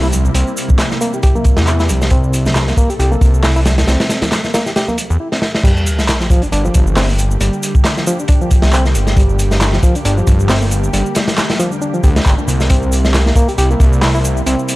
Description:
breakbeat, breaks; 136 BPM; 4/4; swing 56% on 16ths; G dorian; A4 = 440 Hz
lush unison pad; sustained chords; 0.0-14.8 s; C3 to A4; -24 LUFS; equal; chorus, phaser, sidechain pumping
reed electric piano; riff; 0.0-14.8 s; F3 to G4; -20 LUFS; equal; fast tremolo, vintage 12-bit sampler grit, tape echo
fat analog bass; bass; 0.0-14.6 s; G1 to E2; -14 LUFS; equal
electronic shaker and handclaps; drums; 0.0-14.8 s; -23 LUFS; equal
crunchy breakbeat drum kit; drums; 0.1-14.8 s; crash cymbal, hi-hat, kick drum, snare drum; -14 LUFS; equal
congas; percussion; 0.1-5.0 s; -26 LUFS; right 1 dB
sub drop; sound effects; 5.6-7.4 s; -20 LUFS; equal
small room ambience; dry, gritty hardware recording; -11 LUFS; side -18 dB against mid
0.0-5.6 A section; 5.6-14.8 B section
drum fill 5.3-5.6; drop 5.6-14.8; impact 5.6-7.4
0.0 C7; 5.6 Gm; 12.7 C7

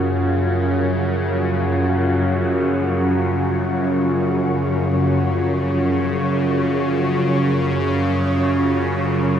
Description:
dark ambient drone; free time; F# major; A4 = 440 Hz
deep dark ambient pad; sustained chords; 0.0-9.4 s; F#3 to A#4; -21 LUFS; equal; chorus, built-in reverb
bowed-like drone; drone; 0.0-9.4 s; F#2 to C#3; -19 LUFS; equal; built-in reverb, phaser
wind-like tuned noise texture; texture; 0.0-9.4 s; C#4 to C#5; -30 LUFS; left 2 dB; built-in reverb
wet cathedral reverb, RT60 6.8 s; in a vast, echoing space; -17 LUFS; side -9 dB against mid
0.0-9.4 A section
fade-in on synth texture 0.0-9.4
0.0 F#; 7.9 N.C.

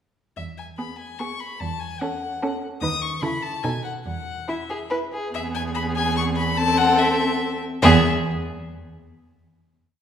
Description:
quick classical-period movement for string quartet; 145 BPM; 3/4; rubato; E major; A4 = 440 Hz
warm violin; melody; 0.4-8.1 s; E5 to D#6; -26 LUFS; left 5 dB
rich cello; bass; 0.4-8.1 s; D#2 to C#3; -25 LUFS; right 3 dB
warm violin; second line; 0.8-8.1 s; E4 to B4; -25 LUFS; equal
rich viola; accompaniment; 0.8-8.1 s; B3 to E4; -26 LUFS; right 1 dB
wet recital hall reverb, RT60 1.7 s; recorded in a church or concert hall; -20 LUFS; side -9 dB against mid
0.4-5.3 A section; 5.3-7.8 coda; 7.8-9.1 final chord
0.4 E; 1.6 F#m7/E; 2.8 B/D#; 3.2 A/C#; 3.6 B7; 4.1 E; 6.6 Am/E; 7.8 E5

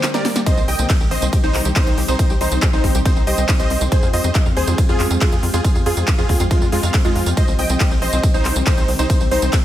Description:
uplifting trance; 139 BPM; 4/4; straight; C minor; A4 = 442 Hz
supersaw stab; melody; 0.0-9.5 s; Ab3 to G5; -24 LUFS; right 1 dB; vintage 12-bit sampler grit, sidechain pumping, tape echo
plucky unison lead; second line; 0.0-9.5 s; F4 to G5; -27 LUFS; equal; analog chorus, sidechain pumping, tape echo
analog pluck; arpeggios; 0.0-9.6 s; G3 to F5; -28 LUFS; left 4 dB; ensemble chorus, sidechain pumping, tape echo
big-room dance drum kit; drums; 0.0-9.6 s; handclaps, hi-hat, ride cymbal, snare drum, tambourine; -24 LUFS; right 1 dB; sidechain pumping on hats, sidechain pumping on perc, sidechain pumping on cymbals
electronic kick drum; drums; 0.5-9.6 s; -16 LUFS; equal
tight sequencer bass; bass; 0.6-9.5 s; Bb1 to F2; -21 LUFS; equal; sidechain pumping
little or no reverb; -14 LUFS; side -12 dB against mid
0.0-9.6 A section
break 0.0-0.5; drum fill 0.0-0.5
0.5 Cm; 3.9 Fmadd9; 7.4 Cm

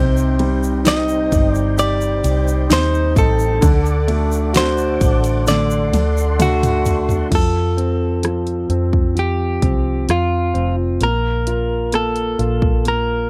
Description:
pop ballad; 65 BPM; 4/4; straight; A4 = 441 Hz
direct-recorded clean electric guitar; melody; 0.0-13.3 s; F4 to Eb5; -23 LUFS; equal; tape echo
clear concert grand piano; accompaniment; 0.0-13.3 s; C3 to G4; -24 LUFS; equal
mellow tonewheel organ; sustained chords; 0.0-7.3 s; Eb4 to D6; -29 LUFS; equal; chorus vibrato, slow rotary speaker
fingerpicked acoustic archtop guitar; arpeggios; 0.0-7.9 s; C3 to A4; -29 LUFS; equal
vintage muted fingered electric bass; bass; 0.0-13.3 s; F1 to F2; -22 LUFS; equal
egg shaker; percussion; 0.2-7.3 s; -36 LUFS; equal
pop drum kit; drums; 0.4-13.1 s; crash cymbal, hi-hat, kick drum, ride cymbal, rim click, snare drum, toms; -21 LUFS; equal
little or no reverb; dry, close 1970s-style studio recording; -17 LUFS; mono
0.0-7.3 A section; 7.3-13.3 B section
drum fill 5.5-7.3
0.0 Cm; 3.6 D; 7.3 F; 11.0 Bb5

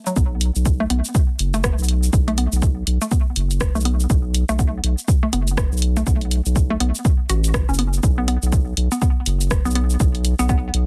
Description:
minimal techno; 122 BPM; 4/4; swing 60% on 16ths; A4 = 440 Hz
hollow square pluck; riff; 0.1-10.6 s; F#3 to F#4; -28 LUFS; equal; chorus, phaser, sidechain pumping, digital delay
punchy analog drum machine; drums; 0.1-10.9 s; hi-hat, rim click, shaker; -28 LUFS; equal
saturated sub bass; bass; 0.2-10.9 s; F#1 to B1; -22 LUFS; equal; sidechain pumping
electronic kick drum; drums; 0.2-10.6 s; -21 LUFS; equal
little or no reverb; dense, heavily limited modern master; -19 LUFS; mono
0.0-10.9 A section
break 0.0
0.0 B5

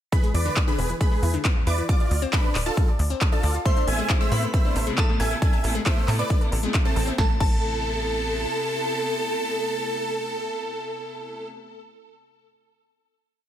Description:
uplifting trance; 136 BPM; 4/4; straight; A harmonic minor; A4 = 444 Hz
big supersaw lead; melody; 0.1-11.5 s; C4 to G#5; -28 LUFS; right 1 dB; sidechain pumping, ping-pong delay
wide unison pluck; second line; 0.1-12.0 s; A5 to G#6; -37 LUFS; right 2 dB; phaser, sidechain pumping, ping-pong delay
analog pluck; arpeggios; 0.1-7.5 s; E2 to D5; -31 LUFS; left 4 dB; chorus, sidechain pumping, ping-pong delay
big-room dance drum kit; drums; 0.1-7.5 s; crash cymbal, handclaps, hi-hat, snare drum; -30 LUFS; equal
electronic kick drum; drums; 0.1-7.5 s; -22 LUFS; equal
tight sequencer bass; bass; 0.3-8.5 s; D1 to A2; -25 LUFS; equal; sidechain pumping
glassy synth bell; second line; 3.7-12.0 s; A4 to C6; -34 LUFS; equal; chorus, phaser, tape echo
bright chamber string section; sustained chords; 3.7-11.5 s; C3 to E4; -33 LUFS; right 1 dB; sidechain pumping
light reverb, digital ambience; -21 LUFS; side -11 dB against mid
0.1-7.2 drop; 7.2-10.7 final chord
drop 0.1-7.2
0.1 E; 1.9 Dm; 3.7 Amadd9

